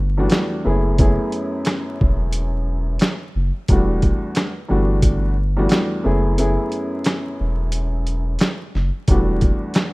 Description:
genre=hip hop, boom-bap hip-hop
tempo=89 BPM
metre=4/4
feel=swing 61% on 16ths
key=unclear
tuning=A4 = 439 Hz
part: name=soft dub sub bass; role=bass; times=0.0-9.5 s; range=E1 to G1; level=-20 LUFS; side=equal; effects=none
part: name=dark upright piano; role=accompaniment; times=0.2-9.9 s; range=E2 to G#4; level=-22 LUFS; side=equal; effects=cassette tape, high-pass filter, low-pass filter
part: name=boom bap sampler-style drum kit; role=drums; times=0.3-9.9 s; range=handclaps, hi-hat, kick drum, snare drum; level=-18 LUFS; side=equal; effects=none
room=digital ambience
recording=rough home demo mix, vinyl crackle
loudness=-17 LUFS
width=side -23 dB against mid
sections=0.0-9.9 A section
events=break 6.4-9.1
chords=0.0 Em11; 0.7 F#m11; 3.7 Em11; 6.0 F#m11; 9.1 Em11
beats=0.32 | 0.99 1.66 2.34 3.01 | 3.69 4.36 5.03 5.71 | 6.38 7.06 7.73 8.40 | 9.08 9.75

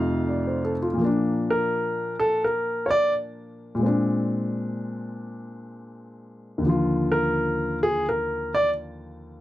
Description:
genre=solo jazz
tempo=85 BPM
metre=4/4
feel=swing 66% on 8ths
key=Bb major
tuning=A4 = 439 Hz
part: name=warm grand piano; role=solo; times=0.0-9.4 s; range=Eb2 to F5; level=-23 LUFS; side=equal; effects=none
room=light reverb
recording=cassette tape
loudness=-22 LUFS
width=side -15 dB against mid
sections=1.0-9.4 A section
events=grand piano solo 1.0-9.4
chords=0.0 F7; 1.0 Bb; 3.8 Bb9; 6.6 Ebsus2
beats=0.28 | 0.99 1.70 2.40 3.11 | 3.81 4.52 5.23 5.93 | 6.64 7.35 8.05 8.76

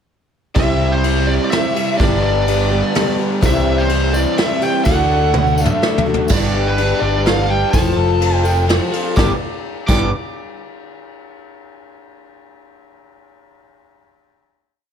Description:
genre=folk rock and heartland rock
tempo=125 BPM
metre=3/4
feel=straight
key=G mixolydian from 6.3 s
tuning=A4 = 444 Hz
part: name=picked plugged-in twelve-string acoustic guitar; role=accompaniment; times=0.5-10.1 s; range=G2 to B4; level=-22 LUFS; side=left 5 dB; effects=none
part: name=overdriven electric guitar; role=riff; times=0.5-10.1 s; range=G2 to A4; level=-21 LUFS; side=right 1 dB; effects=none
part: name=bluesy overdriven lead guitar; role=melody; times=0.6-10.1 s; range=B4 to D6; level=-21 LUFS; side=right 2 dB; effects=distortion, tape echo
part: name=fingered electric bass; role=bass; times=0.6-10.1 s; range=F1 to D2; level=-18 LUFS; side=equal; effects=none
part: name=soft brush drum kit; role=drums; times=0.6-10.0 s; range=crash cymbal, kick drum, ride cymbal, snare drum, toms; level=-20 LUFS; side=equal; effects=none
part: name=tambourine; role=percussion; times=3.4-10.1 s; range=none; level=-36 LUFS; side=left 6 dB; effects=none
room=light reverb, small room ambience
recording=none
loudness=-14 LUFS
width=side -8 dB against mid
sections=0.6-6.3 pre-chorus; 6.3-9.2 outro; 9.2-10.6 final chord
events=drum fill 5.4-6.3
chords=0.6 C; 2.0 G; 3.4 C; 4.9 D; 6.3 G; 7.7 F; 9.2 G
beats=| 0.56 1.04 1.52 | 2.00 2.48 2.95 | 3.43 3.91 4.39 | 4.87 5.35 5.83 | 6.31 6.79 7.27 | 7.75 8.22 8.70 | 9.18 9.65

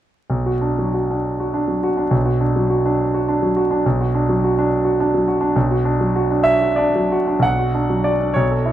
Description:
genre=classical, romantic character piece for solo piano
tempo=59-72 BPM (dotted quarters)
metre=6/8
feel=rubato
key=B minor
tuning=A4 = 440 Hz
part: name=bright concert grand piano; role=solo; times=0.3-8.7 s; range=B1 to F#5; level=-16 LUFS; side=right 1 dB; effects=none
room=light reverb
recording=close, detailed microphones, vinyl crackle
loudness=-16 LUFS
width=side -12 dB against mid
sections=0.3-7.4 A section; 7.4-8.7 B section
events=none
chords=0.3 Bm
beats=| 0.31 1.23 | 2.11 2.99 | 3.85 4.71 | 5.55 6.46 | 7.44 8.36

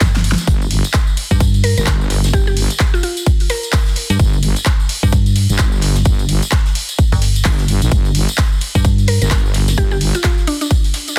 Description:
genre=bass house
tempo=129 BPM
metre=4/4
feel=swing 59% on 16ths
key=G minor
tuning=A4 = 440 Hz
part: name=metallic FM bass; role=bass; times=0.0-9.2 s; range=G1 to G2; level=-17 LUFS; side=equal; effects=tube saturation, sidechain pumping
part: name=big-room dance drum kit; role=drums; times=0.0-11.2 s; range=handclaps, hi-hat, ride cymbal, snare drum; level=-24 LUFS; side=equal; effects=overdrive
part: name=electronic kick drum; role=drums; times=0.0-10.8 s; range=none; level=-17 LUFS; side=equal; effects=overdrive
part: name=soft brush drum kit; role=drums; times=0.0-11.2 s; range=hi-hat, snare drum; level=-35 LUFS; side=equal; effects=none
part: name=tambourine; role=percussion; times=0.0-11.2 s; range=none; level=-30 LUFS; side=equal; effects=none
part: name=wobble bass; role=bass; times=0.5-10.1 s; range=G1 to Bb1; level=-18 LUFS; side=equal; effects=chorus, tube saturation, sidechain pumping
part: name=mallet-like synth pluck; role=melody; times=1.6-4.2, 9.1-10.7 s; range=D4 to Bb4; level=-26 LUFS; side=equal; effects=chorus, delay
room=small room ambience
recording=dense, heavily limited modern master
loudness=-15 LUFS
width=mono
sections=0.0-11.2 A section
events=drum fill 0.0-0.5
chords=none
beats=0.01 | 0.47 0.94 1.41 1.87 | 2.33 2.80 3.27 3.73 | 4.20 4.66 5.12 5.59 | 6.06 6.52 6.99 7.45 | 7.92 8.38 8.85 9.31 | 9.78 10.24 10.71 11.17

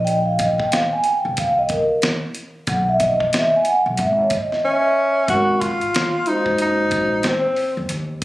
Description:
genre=hip hop, jazz-hop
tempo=92 BPM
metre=4/4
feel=swing 62% on 16ths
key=Ab mixolydian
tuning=A4 = 440 Hz
part: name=vibraphone with soft mallets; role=accompaniment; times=0.0-7.2 s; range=Ab3 to Ab5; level=-18 LUFS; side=equal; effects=none
part: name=upright bass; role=bass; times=0.0-8.2 s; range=Gb1 to Fb2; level=-26 LUFS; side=equal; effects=none
part: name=dusty soul sampler-style drum kit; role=drums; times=0.1-8.2 s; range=hi-hat, kick drum, snare drum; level=-24 LUFS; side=equal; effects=none
part: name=breathy tenor saxophone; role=melody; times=4.6-7.8 s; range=C4 to Gb4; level=-19 LUFS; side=equal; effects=none
room=moderate echo chamber reverb, RT60 1.4 s, studio reverb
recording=recorded on a phone in the room, club reverb, compression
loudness=-16 LUFS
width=side -17 dB against mid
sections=0.0-5.3 A section; 5.3-8.2 B section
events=vibraphone solo 0.0-5.3; drums muted 4.6-5.3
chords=0.0 Bbsus2; 2.7 Bsus24; 5.3 Ab9sus4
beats=| 0.07 0.72 1.37 2.02 | 2.68 3.33 3.98 4.63 | 5.29 5.94 6.59 7.24 | 7.89

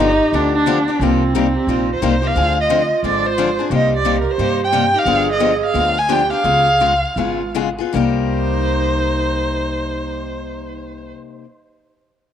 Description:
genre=acoustic string swing (jazz manouche)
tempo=151-177 BPM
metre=4/4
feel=swing 62% on 8ths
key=C minor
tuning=A4 = 441 Hz
part: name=warm violin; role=melody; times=0.0-11.1 s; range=C4 to Ab5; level=-18 LUFS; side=equal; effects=none
part: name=growling clarinet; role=second line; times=0.0-11.1 s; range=Eb4 to Ab4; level=-24 LUFS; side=right 11 dB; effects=none
part: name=picked steel-string acoustic guitar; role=accompaniment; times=0.0-11.5 s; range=C3 to Ab4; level=-21 LUFS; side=left 8 dB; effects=none
part: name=upright bass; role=bass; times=0.0-11.1 s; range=G1 to G2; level=-23 LUFS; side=right 1 dB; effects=none
room=wet spring reverb, RT60 2.0 s, small room ambience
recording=1960s-style stereo with parts hard left and right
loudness=-14 LUFS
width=side -9 dB against mid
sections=0.0-2.4 A section; 2.4-7.9 B section; 7.9-11.1 C section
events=slowing down 5.1-7.9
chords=0.0 G7; 1.0 Cm7; 2.4 Dm7b5; 3.7 Cm7; 5.1 G7b9; 6.4 Db7; 7.9 Cm7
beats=0.33 0.67 | 1.00 1.34 1.68 2.02 | 2.36 2.70 3.03 3.37 | 3.71 4.05 4.39 4.72 | 5.06 5.40 5.75 6.09 | 6.44 6.80 7.17 7.55 | 7.94 8.34 8.74 9.13 | 9.53 9.93 10.33 10.72

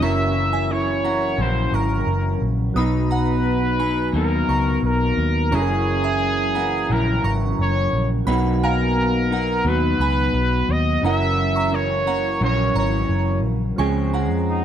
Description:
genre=indie pop, bedroom pop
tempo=87 BPM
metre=4/4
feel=straight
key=unclear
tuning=A4 = 440 Hz
part: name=bright trumpet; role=melody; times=0.0-14.6 s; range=Eb4 to Fb5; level=-23 LUFS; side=equal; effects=analog chorus, slapback echo
part: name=glassy synth bell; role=second line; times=0.0-14.6 s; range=Fb5 to Eb6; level=-30 LUFS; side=right 4 dB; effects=phaser, analog chorus, slapback echo
part: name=electric guitar through a small old amp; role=accompaniment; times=0.0-14.6 s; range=Gb2 to Fb4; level=-25 LUFS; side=left 4 dB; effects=wide subtle chorus, warbly pitch drift
part: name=soft electric-piano-like synth keys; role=accompaniment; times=0.0-14.6 s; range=F3 to Bb5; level=-26 LUFS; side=right 5 dB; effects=chorus, tremolo, cassette tape
part: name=vintage muted picked electric bass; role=bass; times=0.0-14.6 s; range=Gb1 to F2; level=-22 LUFS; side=equal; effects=none
room=little or no reverb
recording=dry, close 1970s-style studio recording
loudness=-18 LUFS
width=side -9 dB against mid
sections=0.0-13.8 A section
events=none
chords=0.0 Gb7; 2.8 Cbmaj7; 5.5 Gb7; 8.3 Cbmaj7; 11.0 Gb7; 13.8 Dbmaj7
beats=| 0.01 0.70 1.39 2.08 | 2.77 3.46 4.15 4.84 | 5.52 6.21 6.90 7.59 | 8.28 8.97 9.66 10.35 | 11.04 11.72 12.41 13.10 | 13.79 14.48

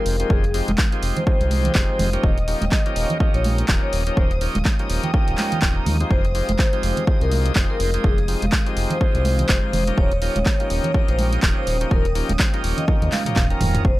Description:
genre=deep house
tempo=124 BPM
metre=4/4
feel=swing 58% on 16ths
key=unclear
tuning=A4 = 439 Hz
part: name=vibraphone with hard mallets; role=melody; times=0.0-14.0 s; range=Ab4 to Bb5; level=-27 LUFS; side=left 1 dB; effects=analog delay
part: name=dark analog pad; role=sustained chords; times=0.0-14.0 s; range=Ab3 to Eb6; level=-34 LUFS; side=equal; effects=chorus, sidechain pumping
part: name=bright tonewheel organ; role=stabs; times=0.0-13.8 s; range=F3 to Bb4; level=-28 LUFS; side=equal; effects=overdrive, slow rotary speaker, sidechain pumping, tape echo
part: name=string machine, violins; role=texture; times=0.0-14.0 s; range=Eb6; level=-39 LUFS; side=equal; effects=ensemble chorus
part: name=round analog bass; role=bass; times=0.1-14.0 s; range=Eb1 to Eb2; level=-22 LUFS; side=equal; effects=none
part: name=punchy analog drum machine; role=drums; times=0.1-13.8 s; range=handclaps, hi-hat, toms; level=-27 LUFS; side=equal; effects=none
part: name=electronic kick drum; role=drums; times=0.3-14.0 s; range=none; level=-19 LUFS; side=equal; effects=none
part: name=congas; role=percussion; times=0.7-13.7 s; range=none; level=-28 LUFS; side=right 3 dB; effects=none
room=little or no reverb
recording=dry, gritty hardware recording, transformer saturation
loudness=-17 LUFS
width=side -17 dB against mid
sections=0.0-14.0 A section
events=drum fill 12.9-13.8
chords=0.0 Fm9; 2.2 Eb9; 6.1 Fm9; 10.0 Eb9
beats=| 0.30 0.78 1.27 1.75 | 2.23 2.72 3.20 3.69 | 4.17 4.65 5.14 5.62 | 6.11 6.59 7.07 7.56 | 8.04 8.53 9.01 9.49 | 9.98 10.46 10.95 11.43 | 11.91 12.40 12.88 13.36 | 13.85

